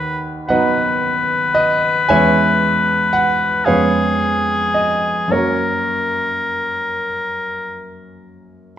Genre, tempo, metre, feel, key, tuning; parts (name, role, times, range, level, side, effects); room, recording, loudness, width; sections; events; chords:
classical, romantic duo for oboe and grand piano; 34-42 BPM (dotted quarters); 6/8; rubato; A4 = 440 Hz
clear oboe; melody; 0.0-7.9 s; G#4 to B4; -17 LUFS; left 3 dB
warm concert grand piano; accompaniment; 0.0-8.8 s; D#2 to B5; -18 LUFS; right 2 dB
wet recital hall reverb, RT60 1.6 s; -14 LUFS; side -10 dB against mid
0.0-8.8 A section
0.0 B/D#; 2.1 C#m7/E; 3.7 C#7/E#; 5.3 F#